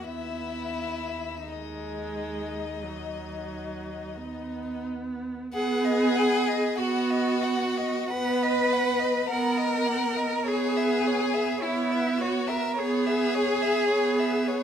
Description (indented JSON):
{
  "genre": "classical, slow romantic movement for string quartet",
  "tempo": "42-53 BPM",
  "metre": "4/4",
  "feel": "rubato",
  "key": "B major",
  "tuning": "A4 = 443 Hz",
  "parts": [
    { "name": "warm violin", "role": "melody", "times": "0.0-14.6 s", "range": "E4 to E5", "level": "-31 LUFS", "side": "left 10 dB", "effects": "none" },
    { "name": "warm violin", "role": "second line", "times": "0.0-14.6 s", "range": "D#4 to F#5", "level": "-33 LUFS", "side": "left 4 dB", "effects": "none" },
    { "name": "rich viola", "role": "accompaniment", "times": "0.0-14.6 s", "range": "F#3 to B3", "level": "-29 LUFS", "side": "right 3 dB", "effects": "none" },
    { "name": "rich cello", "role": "bass", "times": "0.0-14.6 s", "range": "D#2 to B4", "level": "-29 LUFS", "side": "right 5 dB", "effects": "none" }
  ],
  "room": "moderate recital hall reverb, RT60 1.3 s",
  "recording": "none",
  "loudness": "-24 LUFS",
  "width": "side -8 dB against mid",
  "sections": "0.0-5.5 A section; 5.5-14.6 B section",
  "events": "none",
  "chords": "0.1 B/D#; 5.5 B; 10.5 C#m7/B"
}